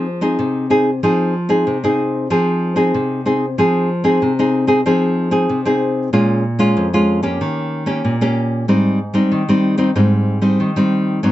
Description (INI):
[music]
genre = samba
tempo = 94 BPM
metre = 4/4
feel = straight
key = F minor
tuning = A4 = 440 Hz
[part]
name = nylon-string guitar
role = solo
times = 0.0-11.3 s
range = F2 to Ab4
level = -14 LUFS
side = equal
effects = none
[sound]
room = moderate studio ambience, RT60 0.5 s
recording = nothing above 7.9 kHz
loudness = -14 LUFS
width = side -14 dB against mid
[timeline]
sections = 0.0-3.6 A section; 3.6-11.3 B section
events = none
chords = 0.0 Fm7; 6.1 Bbm7; 7.4 Eb7; 8.7 Abmaj7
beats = 0.39 | 1.03 1.67 2.31 2.94 | 3.58 4.22 4.86 5.49 | 6.13 6.77 7.41 8.04 | 8.68 9.32 9.96 10.60 | 11.24